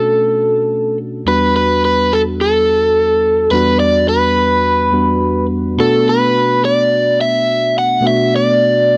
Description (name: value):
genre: blues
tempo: 106 BPM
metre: 4/4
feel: swing 53% on 16ths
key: B minor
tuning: A4 = 440 Hz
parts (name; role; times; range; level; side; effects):
- overdriven semi-hollow guitar; melody; 0.0-9.0 s; A4 to F#5; -15 LUFS; equal; none
- bright tine electric piano; accompaniment; 0.0-9.0 s; E2 to F#4; -19 LUFS; equal; analog chorus
room: little or no reverb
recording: dry, close 1970s-style studio recording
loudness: -14 LUFS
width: mono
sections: 0.0-9.0 A section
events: none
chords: 0.0 Bm7; 1.3 Em7; 5.8 Bm7